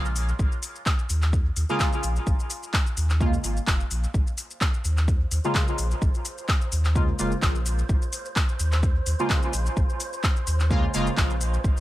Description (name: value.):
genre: dub techno.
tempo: 128 BPM.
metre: 4/4.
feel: swing 55% on 16ths.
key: Bb minor.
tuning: A4 = 441 Hz.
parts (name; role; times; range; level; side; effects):
warm sub bass; bass; 0.0-11.7 s; F1 to Eb2; -24 LUFS; equal; sidechain pumping.
deep house drum kit; drums; 0.1-11.8 s; handclaps, hi-hat, shaker; -29 LUFS; left 1 dB; studio reverb.
electronic kick drum; drums; 0.4-11.7 s; none; -24 LUFS; equal; studio reverb.
resonant sweep polysynth; stabs; 1.7-11.1 s; Db3 to F4; -30 LUFS; equal; chorus, phaser, sidechain pumping, dub echo.
wind-like tuned noise texture; texture; 4.9-11.8 s; C5; -38 LUFS; right 3 dB; built-in reverb, sidechain pumping.
room: little or no reverb.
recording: none.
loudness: -22 LUFS.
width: side -16 dB against mid.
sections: 0.0-11.8 A section.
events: none.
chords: 0.0 Bb5.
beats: | 0.39 0.86 1.33 1.80 | 2.27 2.74 3.21 3.67 | 4.14 4.61 5.08 5.55 | 6.02 6.49 6.96 7.42 | 7.89 8.36 8.83 9.30 | 9.77 10.24 10.71 11.17 | 11.64.